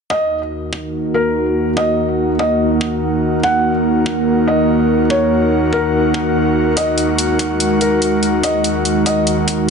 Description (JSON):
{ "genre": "heavy wobble dubstep", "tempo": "144 BPM", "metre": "4/4", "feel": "half-time", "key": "Eb minor", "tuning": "A4 = 441 Hz", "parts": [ { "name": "felt-muted upright piano", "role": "melody", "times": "0.1-9.7 s", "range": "Bb4 to Gb5", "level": "-19 LUFS", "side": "left 1 dB", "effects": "ping-pong delay" }, { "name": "evolving wavetable pad", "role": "sustained chords", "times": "0.4-9.7 s", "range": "Eb2 to Bb4", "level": "-17 LUFS", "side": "right 1 dB", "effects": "chorus, built-in reverb, sidechain pumping" }, { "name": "electronic kick drum", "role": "drums", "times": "0.1-9.6 s", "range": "none", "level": "-26 LUFS", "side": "equal", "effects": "high-pass filter on kick, studio reverb" }, { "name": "airy breathy pad", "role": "texture", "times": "0.4-9.7 s", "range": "Eb4 to Gb5", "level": "-18 LUFS", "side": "equal", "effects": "chorus, sidechain pumping" }, { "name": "electronic hi-hat", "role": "drums", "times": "6.8-9.6 s", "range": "none", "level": "-21 LUFS", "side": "left 1 dB", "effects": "studio reverb" } ], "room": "moderate lush hall reverb, RT60 2.2 s", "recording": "nothing above 10.7 kHz", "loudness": "-13 LUFS", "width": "side -5 dB against mid", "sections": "0.1-9.7 A section", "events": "none", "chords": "0.1 Ebm" }